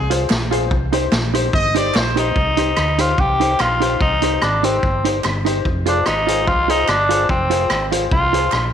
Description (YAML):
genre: ska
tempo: 146 BPM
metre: 4/4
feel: swing 53% on 8ths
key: C minor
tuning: A4 = 442 Hz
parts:
  - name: brilliant trumpet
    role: melody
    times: 0.0-2.2 s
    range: Ab4 to Eb5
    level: -23 LUFS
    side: equal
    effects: slapback echo
  - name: hollow-body short-scale fingered electric bass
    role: bass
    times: 0.0-8.7 s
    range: F1 to D2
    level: -22 LUFS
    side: equal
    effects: none
  - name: clean electric guitar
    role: accompaniment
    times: 0.1-8.6 s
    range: Eb4 to C5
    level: -24 LUFS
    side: right 12 dB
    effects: none
  - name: warm upright piano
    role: stabs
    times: 0.1-8.5 s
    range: Eb4 to C5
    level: -24 LUFS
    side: left 10 dB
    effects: none
  - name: vintage drum kit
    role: drums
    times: 0.1-8.6 s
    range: hi-hat, kick drum, rim click, snare drum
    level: -22 LUFS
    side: equal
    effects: none
  - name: group handclap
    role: percussion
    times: 0.3-8.6 s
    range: none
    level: -33 LUFS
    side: right 12 dB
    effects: none
  - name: raspy tenor saxophone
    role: melody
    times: 2.2-8.7 s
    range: C4 to G4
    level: -18 LUFS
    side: left 1 dB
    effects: none
room: moderate echo chamber reverb, RT60 2.3 s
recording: 1960s-style stereo with parts hard left and right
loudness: -15 LUFS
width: side -8 dB against mid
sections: 0.0-2.4 A section; 2.4-8.7 B section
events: trumpet solo 0.0-2.4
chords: 0.0 Fm; 0.7 Cm; 5.6 Fm